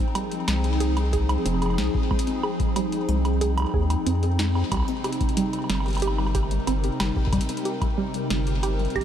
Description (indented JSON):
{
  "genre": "IDM",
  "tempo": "92 BPM",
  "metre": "4/4",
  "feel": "straight",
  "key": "unclear",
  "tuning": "A4 = 441 Hz",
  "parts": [
    { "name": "hollow soft pad", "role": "sustained chords", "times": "0.0-9.0 s", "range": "C3 to G5", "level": "-28 LUFS", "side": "left 1 dB", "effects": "ensemble chorus" },
    { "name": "warbly dusty pluck", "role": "arpeggios", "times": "0.2-9.0 s", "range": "G3 to Ab4", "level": "-29 LUFS", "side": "right 2 dB", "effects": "chorus, ping-pong delay" },
    { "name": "booming analog drum machine", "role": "drums", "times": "0.2-9.0 s", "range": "hi-hat, snare drum, woodblock", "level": "-31 LUFS", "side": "right 1 dB", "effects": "ping-pong delay" },
    { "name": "round analog bass", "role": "bass", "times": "0.5-9.0 s", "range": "F1 to F2", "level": "-24 LUFS", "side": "equal", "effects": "none" },
    { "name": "electronic kick drum", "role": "drums", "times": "1.1-9.0 s", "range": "none", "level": "-26 LUFS", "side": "equal", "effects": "none" }
  ],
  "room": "moderate huge ambient reverb, RT60 8.1 s",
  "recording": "dreamy mix soaked in reverb",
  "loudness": "-22 LUFS",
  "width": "side -9 dB against mid",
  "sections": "0.0-9.0 A section",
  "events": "none",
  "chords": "0.0 Fm7; 4.7 Cm7",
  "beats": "0.15 0.80 1.46 | 2.11 2.76 3.41 4.07 | 4.72 5.37 6.02 6.67 | 7.33 7.98 8.63"
}